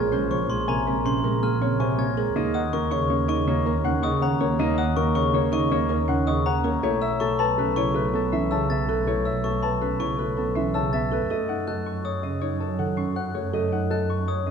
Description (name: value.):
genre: classical, minimalist pattern music.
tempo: 161 BPM.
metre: 6/4.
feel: straight.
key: F# dorian.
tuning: A4 = 442 Hz.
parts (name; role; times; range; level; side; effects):
Celtic harp; melody; 0.0-14.5 s; G#4 to C#6; -28 LUFS; left 9 dB; none.
dark grand piano; accompaniment; 0.0-14.5 s; B#2 to C#4; -28 LUFS; right 2 dB; none.
folk marimba with soft mallets; arpeggios; 0.0-14.5 s; B#3 to D#5; -30 LUFS; right 6 dB; none.
warm symphonic double bass section; bass; 0.0-14.5 s; A#1 to F#2; -28 LUFS; right 2 dB; none.
glockenspiel with brass mallets; arpeggios; 0.3-14.5 s; A#5 to A6; -31 LUFS; left 3 dB; none.
room: moderate scoring stage reverb, RT60 1.5 s.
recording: dark, warm production.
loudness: -22 LUFS.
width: side -6 dB against mid.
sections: 0.0-11.3 A section; 11.3-14.5 B section.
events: none.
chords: 0.0 A#m7; 2.4 D#m; 6.8 B7sus4; 11.3 F#m.